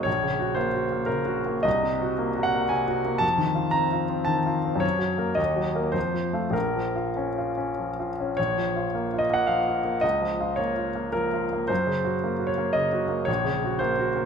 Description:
classical, romantic character piece for solo piano; 97-117 BPM; 3/4; rubato; Bb minor; A4 = 439 Hz
bright grand piano; solo; 0.0-14.3 s; Bb1 to Bb5; -23 LUFS; equal
wet recital hall reverb, RT60 1.4 s; -23 LUFS; side -6 dB against mid
0.0-8.4 A section; 8.4-14.3 A section
0.1 Gb/Bb; 1.7 Cm7b5; 3.2 F7; 4.8 Gb; 5.4 Ebm; 6.0 F; 6.5 Bbm; 10.0 Bbm/Db; 11.7 Gb; 13.3 Gb/Bb

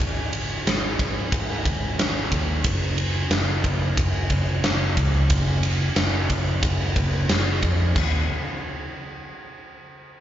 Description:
quiet-loud alternative rock; 90 BPM; 4/4; straight; A4 = 438 Hz
overdriven picked electric bass; bass; 0.0-8.3 s; Gb1 to F2; -24 LUFS; equal
huge arena drum kit; drums; 0.0-8.1 s; crash cymbal, kick drum, ride cymbal, snare drum; -23 LUFS; equal
light reverb; live gig heard through the venue's PA, club reverb, nothing above 7.5 kHz; -20 LUFS; side -11 dB against mid
0.0-8.0 A section; 8.0-10.2 B section

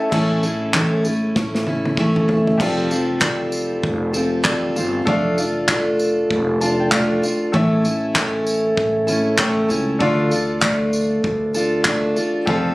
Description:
acoustic pop; 97 BPM; 4/4; swing 60% on 16ths; D minor; A4 = 439 Hz
clear baby grand piano; accompaniment; 0.0-12.7 s; E4 to C#6; -28 LUFS; left 2 dB; plate reverb
picked steel-string acoustic guitar; accompaniment; 0.0-12.7 s; A2 to A4; -18 LUFS; equal
upright bass; bass; 0.1-12.7 s; F1 to D2; -27 LUFS; equal
natural country drum kit; drums; 0.1-12.6 s; crash cymbal, handclaps, kick drum, snare drum, tambourine, toms; -22 LUFS; equal
light reverb; recorded on a phone in the room, studio reverb; -16 LUFS; side -20 dB against mid
0.1-2.6 A section; 2.6-12.7 B section
drum fill 1.4-2.6; grand piano fill 6.3-7.5
0.1 A; 2.6 Fadd9; 5.1 Dm/F; 7.5 A; 10.0 Dm

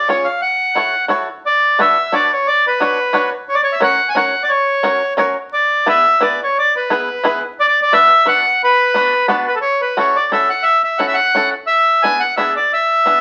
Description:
musette; 176 BPM; 3/4; swing 54% on 8ths; B dorian, A major from 9.6 s; A4 = 441 Hz
accordion; melody; 0.0-13.2 s; A4 to G#5; -15 LUFS; equal
bluegrass banjo; accompaniment; 0.1-13.2 s; B3 to C#5; -21 LUFS; equal
wet studio reverb, RT60 0.7 s; very old 78 rpm record, vinyl crackle; -15 LUFS; mono
0.0-1.4 A section; 1.4-9.6 B section; 9.6-13.2 C section
0.4 F#m7; 1.4 Bmadd9; 3.5 F#; 5.5 E; 7.6 Bm; 9.6 A6; 11.7 E7

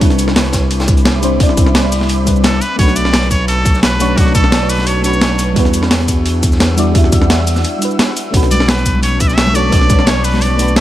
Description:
liquid drum and bass; 173 BPM; 4/4; straight; B minor; A4 = 444 Hz
mellow FM electric piano; accompaniment; 0.0-10.8 s; G3 to E5; -18 LUFS; left 1 dB; chorus, phaser, dub echo
ethereal airy pad; sustained chords; 0.0-10.8 s; C4 to E6; -25 LUFS; right 1 dB; ensemble chorus, built-in reverb, tremolo, sidechain pumping
smooth gliding synth bass; bass; 0.0-10.8 s; B1 to E2; -16 LUFS; equal
breakbeat sampler-style drum kit; drums; 0.0-10.8 s; cabasa, hi-hat, ride cymbal, snare drum; -17 LUFS; equal
crunchy breakbeat drum kit; drums; 0.0-10.8 s; hi-hat, snare drum; -25 LUFS; equal; high-pass filter on hats, high-pass filter on snare, high-pass filter on room
electronic kick drum; drums; 0.0-10.0 s; -14 LUFS; equal
trumpet with straight mute; melody; 2.4-5.5, 8.5-10.8 s; F#4 to E5; -20 LUFS; equal; dub echo
congas; percussion; 8.5-10.4 s; -22 LUFS; left 2 dB
studio ambience; -10 LUFS; side -13 dB against mid
0.0-10.8 A section
break 7.6-8.3
0.0 Cmaj9; 2.6 Bm9; 5.6 Em9; 8.3 Bm9

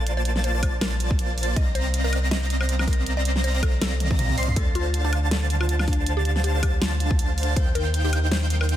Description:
future bass; 160 BPM; 4/4; swing 56% on 16ths, half-time; A4 = 440 Hz
mallet-like synth pluck; melody; 0.0-8.8 s; D4 to Eb5; -34 LUFS; left 1 dB; chorus, phaser, sidechain pumping, dub echo
airy dreamy lead; arpeggios; 0.0-8.8 s; G6 to C7; -32 LUFS; equal; chorus, cassette tape, sidechain pumping, dub echo
supersaw chords; riff; 0.0-8.8 s; D3 to C6; -29 LUFS; right 1 dB; phaser, sidechain pumping
saturated sub bass; bass; 0.0-8.8 s; Bb1 to Eb2; -24 LUFS; equal; sidechain pumping
pop drum kit; drums; 0.1-8.8 s; hi-hat, snare drum, toms, woodblock; -28 LUFS; equal; studio reverb
electronic kick drum; drums; 0.6-7.6 s; -24 LUFS; equal; studio reverb
light reverb; dense, heavily limited modern master; -20 LUFS; side -12 dB against mid
0.0-8.8 A section
drum fill 4.0-4.6
0.0 Bbmaj9; 1.6 Cm11; 4.6 Dm7; 7.6 Eb69

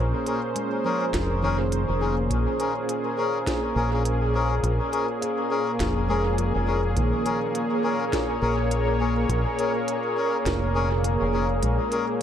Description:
ambient dub; 103 BPM; 4/4; swing 59% on 16ths; Bb minor; A4 = 442 Hz
warm analog pad; sustained chords; 0.0-12.2 s; Bb2 to Db5; -26 LUFS; equal; chorus, tremolo
handpan; arpeggios; 0.0-12.2 s; Eb3 to F5; -36 LUFS; equal; analog delay
deep dub fingered electric bass; bass; 0.0-11.8 s; F1 to Bb1; -25 LUFS; equal
melodica; stabs; 0.3-12.1 s; Db4 to Bb4; -28 LUFS; left 3 dB; dub echo
organic electronic drum kit; drums; 0.3-12.1 s; hi-hat, snare drum; -35 LUFS; right 1 dB; dub echo
electronic kick drum; drums; 1.1-11.8 s; -32 LUFS; equal
bubbling stepped-filter texture; texture; 6.3-12.2 s; Bb4; -33 LUFS; right 1 dB; chorus, built-in reverb
light reverb; echo-heavy mix; -22 LUFS; side -9 dB against mid
0.0-12.2 A section
0.0 Bbm7

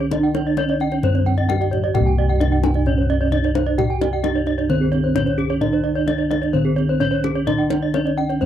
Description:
Balinese gamelan; 131 BPM; 4/4; straight; A4 = 439 Hz
gamelan-type bronze metallophone; melody; 0.0-8.5 s; C4 to G4-45c; -22 LUFS; right 5 dB
gamelan-type bronze metallophone; arpeggios; 0.0-8.4 s; Ab4-40c to Ab5-40c; -28 LUFS; right 8 dB
gamelan-type bossed gongs; bass; 0.0-8.5 s; C2 to G4-45c; -20 LUFS; left 1 dB
gamelan-type bronze metallophone; arpeggios; 0.1-8.5 s; Ab4-40c to Ab5-40c; -25 LUFS; left 7 dB
kendang; percussion; 0.1-8.5 s; -27 LUFS; left 6 dB
light reverb; dry, close 1970s-style studio recording; -17 LUFS; side -10 dB against mid
0.0-8.5 A section

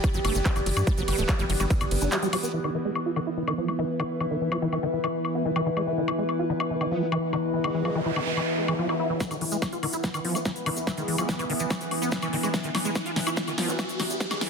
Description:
psychedelic trance; 144 BPM; 4/4; straight; A4 = 438 Hz
overtone-sweeping drone; sustained chords; 0.0-14.5 s; E3 to B3; -31 LUFS; equal; chorus, built-in reverb, sidechain pumping
liquid acid bass; riff; 0.0-14.5 s; D#3 to F4; -30 LUFS; equal; chorus, auto-pan, cassette tape, sidechain pumping, ping-pong delay
big-room dance drum kit; drums; 0.0-14.5 s; handclaps, hi-hat, ride cymbal, snare drum, woodblock; -31 LUFS; left 2 dB; overdrive, low-pass filter on hats, low-pass filter on cymbals, low-pass filter on perc, low-pass filter on snare
electronic kick drum; drums; 0.0-1.8, 9.2-14.3 s; -26 LUFS; equal; overdrive, high-pass filter on kick
tube shaker; percussion; 0.0-2.5, 9.2-14.4 s; -39 LUFS; left 3 dB
warbly tape-like pad; texture; 0.0-14.5 s; E4 to G5; -33 LUFS; left 1 dB; chorus, built-in reverb, phaser, sidechain pumping
tight sequencer bass; bass; 0.1-2.1, 9.3-14.5 s; D1 to G2; -30 LUFS; equal; high-pass filter
formant-sweep wobble bass; second line; 0.2-2.1, 6.9-14.5 s; G#3 to D4; -41 LUFS; right 2 dB
noise sweep and riser; sound effects; 7.7-14.5 s; -35 LUFS; right 1 dB
moderate digital room reverb, RT60 0.9 s; dense, heavily limited modern master, high-pass filter; -24 LUFS; side -5 dB against mid
0.0-2.5 A section; 2.5-9.2 B section; 9.2-14.5 C section
drop 0.0-2.5; kick drops out 2.1-2.5; noise sweep 7.7-9.2; build-up 9.2-14.5; drum fill 9.2-14.5; riser 9.2-14.5; filter sweep on acid bass 9.2-14.5
0.0 G5; 2.5 E5

